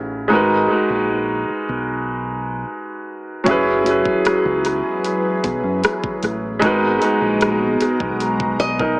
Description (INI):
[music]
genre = contemporary R&B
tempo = 76 BPM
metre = 4/4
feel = straight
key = G# minor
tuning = A4 = 444 Hz
[part]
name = clear baby grand piano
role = accompaniment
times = 0.0-9.0 s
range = F#3 to B4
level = -18 LUFS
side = equal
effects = analog delay
[part]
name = deep dub fingered electric bass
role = bass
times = 0.0-8.9 s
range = F#1 to F#2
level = -26 LUFS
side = equal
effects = none
[part]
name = chorused pulse-width pad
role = sustained chords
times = 3.5-9.0 s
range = F#3 to A#5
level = -22 LUFS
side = equal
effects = none
[part]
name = trap drum kit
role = drums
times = 3.5-9.0 s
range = hi-hat, kick drum, rim click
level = -24 LUFS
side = equal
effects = analog delay
[part]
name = flamenco guitar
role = arpeggios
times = 8.6-9.0 s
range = D#5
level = -20 LUFS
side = left 1 dB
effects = analog delay
[sound]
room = moderate plate reverb, RT60 1.6 s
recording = echo-heavy mix, small speaker sound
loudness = -16 LUFS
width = side -23 dB against mid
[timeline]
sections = 0.0-9.0 A section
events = none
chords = 0.3 G#m9; 3.5 F#9sus4; 6.6 G#m9